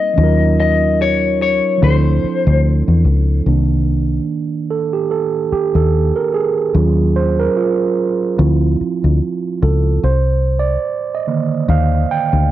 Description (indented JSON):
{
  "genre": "R&B, neo-soul",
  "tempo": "73 BPM",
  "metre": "4/4",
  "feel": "swing 57% on 16ths",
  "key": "unclear",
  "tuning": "A4 = 442 Hz",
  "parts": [
    { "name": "electric guitar through a small old amp", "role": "melody", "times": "0.0-2.6 s", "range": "C5 to Eb5", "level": "-17 LUFS", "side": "left 6 dB", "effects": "none" },
    { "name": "mellow tine electric piano", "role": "accompaniment", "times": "0.0-12.5 s", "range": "D3 to G5", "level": "-17 LUFS", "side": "right 6 dB", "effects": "auto-pan, cassette tape" },
    { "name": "deep dub fingered electric bass", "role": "bass", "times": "0.2-12.5 s", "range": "C2 to E2", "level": "-14 LUFS", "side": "left 1 dB", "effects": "tube saturation" }
  ],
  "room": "light reverb, digital ambience",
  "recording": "home recording on cassette",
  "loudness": "-13 LUFS",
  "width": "side -13 dB against mid",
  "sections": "0.0-3.5 A section; 3.5-12.5 B section",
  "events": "tine electric piano solo 3.5-12.5",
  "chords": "0.2 Ebm9; 1.8 Dm9; 3.5 Cm9; 6.7 Ebm9; 8.4 Dm9; 10.0 Cm9"
}